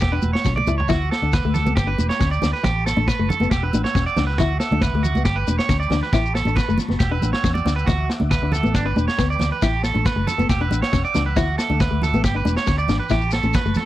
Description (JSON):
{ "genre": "highlife guitar band", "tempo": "138 BPM", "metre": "4/4", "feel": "straight", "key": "D major", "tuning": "A4 = 440 Hz", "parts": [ { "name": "nylon-string guitar", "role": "accompaniment", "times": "0.0-13.8 s", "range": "A3 to E4", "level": "-26 LUFS", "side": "left 7 dB", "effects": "none" }, { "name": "mellow tonewheel organ", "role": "sustained chords", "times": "0.0-13.9 s", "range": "E5 to E6", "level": "-35 LUFS", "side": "equal", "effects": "slow rotary speaker" }, { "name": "electric guitar at the edge of break-up", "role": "arpeggios", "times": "0.0-13.9 s", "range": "D4 to D5", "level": "-24 LUFS", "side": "right 6 dB", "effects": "none" }, { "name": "vintage muted fingered electric bass", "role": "bass", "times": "0.0-13.7 s", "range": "E1 to E2", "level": "-23 LUFS", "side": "equal", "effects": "none" }, { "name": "vintage drum kit", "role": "drums", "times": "0.0-13.8 s", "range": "kick drum, snare drum, toms", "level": "-23 LUFS", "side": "equal", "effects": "none" }, { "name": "shekere", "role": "percussion", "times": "0.0-13.9 s", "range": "none", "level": "-29 LUFS", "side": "left 4 dB", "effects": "none" }, { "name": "congas", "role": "percussion", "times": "0.2-13.9 s", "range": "none", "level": "-26 LUFS", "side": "right 2 dB", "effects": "none" } ], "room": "little or no reverb", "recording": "dry, close 1970s-style studio recording", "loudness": "-18 LUFS", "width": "side -14 dB against mid", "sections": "0.9-13.9 A section", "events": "drum fill 0.5-0.9", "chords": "0.0 Emadd9; 0.5 Aadd9; 0.9 Dadd9; 1.8 G; 2.6 Aadd9; 3.5 Emadd9; 4.4 Dadd9; 5.3 G; 6.1 Aadd9; 7.0 Emadd9; 7.9 Dadd9; 8.7 G; 9.6 Aadd9; 10.5 Emadd9; 11.4 Dadd9; 12.2 G; 13.1 Aadd9", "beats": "0.02 0.46 | 0.89 1.33 1.77 2.20 | 2.64 3.08 3.51 3.95 | 4.38 4.82 5.26 5.69 | 6.13 6.57 7.00 7.44 | 7.87 8.31 8.75 9.18 | 9.62 10.05 10.49 10.93 | 11.36 11.80 12.23 12.67 | 13.11 13.54" }